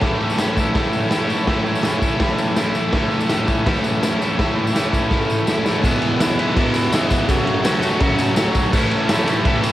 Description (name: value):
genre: garage rock duo or trio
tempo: 166 BPM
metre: 4/4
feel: straight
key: A major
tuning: A4 = 444 Hz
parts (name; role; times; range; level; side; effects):
- crunchy overdriven guitar; riff; 0.0-9.7 s; E2 to F#4; -18 LUFS; equal; spring reverb, cassette tape
- raw garage drum kit; drums; 0.0-9.7 s; crash cymbal, kick drum, ride cymbal, snare drum; -20 LUFS; equal; cassette tape
- tambourine; percussion; 0.2-9.7 s; none; -35 LUFS; left 3 dB; none
room: light reverb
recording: home recording on cassette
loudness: -16 LUFS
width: side -14 dB against mid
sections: 0.0-5.8 A section; 5.8-9.7 B section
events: drum fill 5.1-5.8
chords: 0.0 A; 5.8 E; 7.3 F#m; 8.7 A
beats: | 0.03 0.39 0.75 1.12 | 1.48 1.84 2.21 2.57 | 2.93 3.30 3.66 4.02 | 4.38 4.75 5.11 5.47 | 5.83 6.20 6.56 6.92 | 7.28 7.64 8.00 8.36 | 8.72 9.08 9.44